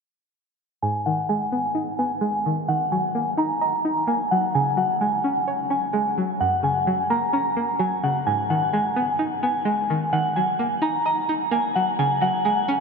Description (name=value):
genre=hip hop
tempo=129 BPM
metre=4/4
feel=half-time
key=G# minor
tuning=A4 = 442 Hz
part: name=soft synth bell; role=melody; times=0.8-12.8 s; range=F#5 to A#5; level=-22 LUFS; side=equal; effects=chorus, low-pass filter, diffuse ambient delay
part: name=string-like resonator pluck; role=accompaniment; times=0.8-12.8 s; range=F#2 to D#5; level=-25 LUFS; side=equal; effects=chorus, low-pass filter
room=wet huge ambient reverb, RT60 7.3 s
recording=dreamy mix soaked in reverb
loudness=-20 LUFS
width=side -5 dB against mid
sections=0.8-12.8 A section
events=filter sweep 0.8-12.8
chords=0.8 G#m; 2.7 D#m; 4.5 C#sus4; 6.4 F#; 8.3 G#m; 10.1 D#m; 12.0 C#sus4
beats=| 0.82 1.29 1.75 2.22 | 2.69 3.15 3.62 4.08 | 4.54 5.01 5.47 5.94 | 6.41 6.87 7.34 7.80 | 8.27 8.73 9.20 9.66 | 10.13 10.59 11.06 11.52 | 11.99 12.45